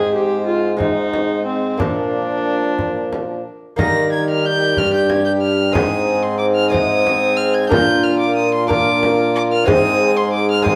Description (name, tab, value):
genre	classical, renaissance-style consort dance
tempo	61 BPM (dotted quarters)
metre	6/8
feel	straight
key	unclear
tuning	A4 = 440 Hz
part	dark violin	melody	0.0-10.8 s	Bb4 to Bb6	-24 LUFS	equal	none
part	warm viola	second line	0.0-10.8 s	C4 to Ab4	-25 LUFS	equal	none
part	lute	accompaniment	0.0-10.8 s	G2 to C5	-26 LUFS	equal	none
part	mellow bassoon	accompaniment	0.0-10.8 s	F3 to C4	-24 LUFS	equal	none
part	clear trombone	bass	0.0-10.8 s	G2 to Eb3	-23 LUFS	equal	none
part	frame drum	percussion	0.8-10.8 s	none	-25 LUFS	equal	none
room	wet stone room reverb, RT60 1.4 s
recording	none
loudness	-17 LUFS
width	mono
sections	0.0-3.8 A section; 3.8-10.8 A section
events	none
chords	0.0 Ab; 1.8 Bb; 3.8 Eb; 5.8 Ab; 7.7 Bb; 9.7 Ab